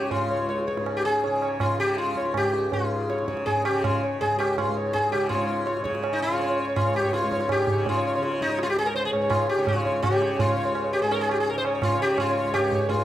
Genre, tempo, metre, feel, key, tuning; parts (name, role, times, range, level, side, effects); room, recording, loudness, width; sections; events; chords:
indian classical, Hindustani; 164 BPM; 7/4; straight; A4 = 439 Hz
sitar; melody; 0.0-13.0 s; Eb4 to Db5; -24 LUFS; left 1 dB
tanpura; drone; 0.0-13.0 s; Db2 to Db3; -31 LUFS; left 1 dB
tabla; percussion; 0.0-13.0 s; -28 LUFS; right 3 dB
moderate recital hall reverb, RT60 1.6 s; -22 LUFS; side -12 dB against mid
0.0-5.3 A section; 5.3-13.0 B section
speeding up 0.0-13.0